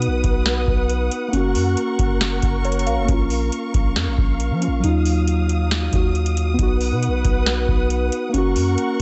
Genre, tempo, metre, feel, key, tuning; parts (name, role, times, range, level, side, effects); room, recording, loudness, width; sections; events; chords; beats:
hip hop, trap; 137 BPM; 4/4; half-time; A4 = 439 Hz
muted felt-like synth keys; accompaniment; 0.0-9.0 s; Gb3 to F5; -26 LUFS; equal; chorus
warm symphonic string section; sustained chords; 0.0-9.0 s; Gb3 to Eb6; -29 LUFS; equal
long sustained 808-style bass; bass; 0.0-9.0 s; Gb1 to F3; -24 LUFS; equal
booming analog drum machine; drums; 0.0-9.0 s; hi-hat, kick drum, snare drum; -24 LUFS; equal
digital ambience; nothing above 8.0 kHz; -20 LUFS; mono
0.0-9.0 A section
synth keys fill 2.4-3.1
0.0 B; 1.3 Gb; 3.1 Bbm; 4.8 Ebmadd9; 6.6 B; 8.3 Gb
0.02 0.46 0.90 | 1.33 1.77 2.21 2.65 | 3.08 3.52 3.96 4.40 | 4.84 5.27 5.71 6.15 | 6.59 7.03 7.46 7.90 | 8.34 8.78